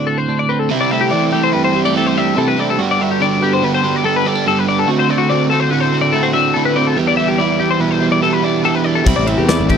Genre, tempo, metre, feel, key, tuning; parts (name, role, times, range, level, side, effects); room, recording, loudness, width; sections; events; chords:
math rock and midwest emo; 144 BPM; 5/4; straight; A4 = 436 Hz
twelve-string electric guitar; accompaniment; 0.0-9.8 s; D2 to A4; -18 LUFS; right 6 dB
twelve-string electric guitar; arpeggios; 0.0-9.8 s; F#4 to E5; -17 LUFS; left 8 dB; analog chorus
overdriven electric guitar; riff; 0.7-9.8 s; G2 to G4; -18 LUFS; right 2 dB
fuzz fingered electric bass; bass; 9.1-9.8 s; A1 to E2; -17 LUFS; left 1 dB; overdrive
modern studio drum kit; drums; 9.1-9.8 s; crash cymbal, kick drum, ride cymbal, snare drum; -16 LUFS; left 1 dB
little or no reverb; dry, close 1970s-style studio recording; -13 LUFS; side -7 dB against mid
0.7-9.8 A section
break 0.0-0.7
0.0 D7; 0.7 C69; 2.8 Gmaj9; 4.9 D7; 7.0 Em7; 9.1 C69